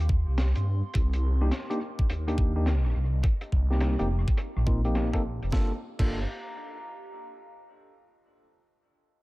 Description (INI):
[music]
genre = glitch hop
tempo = 105 BPM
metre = 4/4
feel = swing 64% on 16ths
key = G minor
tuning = A4 = 440 Hz
[part]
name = phased detuned saw bass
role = bass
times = 0.0-6.3 s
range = F1 to G2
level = -26 LUFS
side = equal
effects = phaser, overdrive
[part]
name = warbly tape-like pad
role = texture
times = 0.0-7.8 s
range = F4 to C6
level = -46 LUFS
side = equal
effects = chorus, built-in reverb, sidechain pumping
[part]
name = electronic kick drum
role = drums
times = 0.1-6.1 s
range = none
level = -26 LUFS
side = equal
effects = none
[part]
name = crunchy breakbeat drum kit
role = drums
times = 0.4-6.1 s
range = crash cymbal, hi-hat, rim click, snare drum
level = -37 LUFS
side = equal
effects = low-pass filter on hats, low-pass filter on cymbals, low-pass filter on snare, low-pass filter on room
[part]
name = tine electric piano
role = stabs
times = 1.4-6.2 s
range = Bb3 to A4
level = -33 LUFS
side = equal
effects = vintage 12-bit sampler grit, sidechain pumping, low-pass filter, diffuse ambient delay
[sound]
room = little or no reverb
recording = none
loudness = -24 LUFS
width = side -20 dB against mid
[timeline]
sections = 0.0-5.5 A section; 5.5-7.8 B section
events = fade-out on ambient pad 0.0-5.5; filter sweep on detuned saw bass 0.0-5.5; filter sweep on tine electric piano 0.0-5.5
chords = 0.0 Eb69; 1.0 Cm7; 3.2 F7sus4; 5.5 Gm7